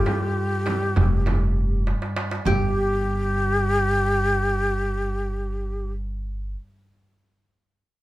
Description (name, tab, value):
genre	Turkish makam ensemble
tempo	201 BPM (eighths)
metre	9/8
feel	straight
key	unclear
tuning	A4 = 440 Hz
part	qanun	melody	0.0-6.5 s	F4 to A4-30c	-29 LUFS	equal	none
part	breathy ney	second line	0.0-5.9 s	G4 to A4	-25 LUFS	left 1 dB	none
part	dark double bass	drone	0.0-6.0 s	G2	-28 LUFS	equal	none
part	darbuka	percussion	0.1-2.7 s	none	-28 LUFS	right 1 dB	none
part	frame drum	percussion	0.1-2.7 s	none	-30 LUFS	right 3 dB	none
part	upright bass	bass	1.0-6.5 s	F1 to G1	-25 LUFS	equal	none
room	light reverb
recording	close, detailed microphones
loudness	-21 LUFS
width	side -16 dB against mid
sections	0.0-2.5 A section; 2.5-5.2 B section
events	drum fill 1.9-2.5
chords	none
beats	0.07 0.37 0.67 0.96 1.26 1.56 1.86 2.16 | 2.46 2.76 3.06 3.36 3.66 3.96 4.25 4.55 4.85